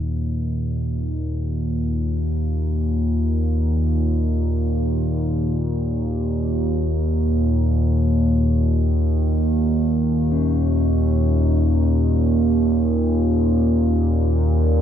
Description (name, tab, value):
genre	dark ambient drone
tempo	free time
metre	none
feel	none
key	unclear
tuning	A4 = 440 Hz
part	analog drone	drone	0.0-14.8 s	Eb2 to Bb2	-18 LUFS	equal	chorus
part	quartz singing bowl	texture	10.3-14.8 s	Db4	-27 LUFS	left 6 dB	none
room	wet cathedral reverb, RT60 6.2 s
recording	in a vast, echoing space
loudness	-18 LUFS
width	side -9 dB against mid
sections	0.0-14.8 A section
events	none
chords	0.0 Eb5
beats	free time